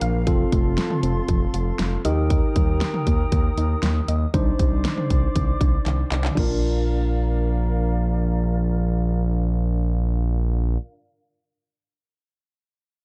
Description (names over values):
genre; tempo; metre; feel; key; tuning
synth-pop; 118 BPM; 4/4; straight; Bb major; A4 = 440 Hz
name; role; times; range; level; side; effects
tine electric piano; accompaniment; 0.0-10.8 s; C4 to C5; -31 LUFS; equal; low-pass filter
breathy small flute group; sustained chords; 0.0-10.8 s; A4 to Eb6; -35 LUFS; equal; low-pass filter
soft round pluck; arpeggios; 0.0-10.8 s; D3 to F5; -33 LUFS; equal; chorus, low-pass filter, digital delay
smooth gliding synth bass; bass; 0.0-10.8 s; F1 to Eb2; -24 LUFS; equal; none
pop drum kit; drums; 0.0-6.5 s; crash cymbal, handclaps, hi-hat, kick drum, snare drum, toms; -25 LUFS; equal; none
room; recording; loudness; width
light reverb; dark, warm production; -22 LUFS; mono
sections
0.0-6.4 A section; 6.4-10.4 B section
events
drum fill 5.9-6.4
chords
0.3 F; 2.0 Eb; 4.3 Cmadd9; 6.4 Bb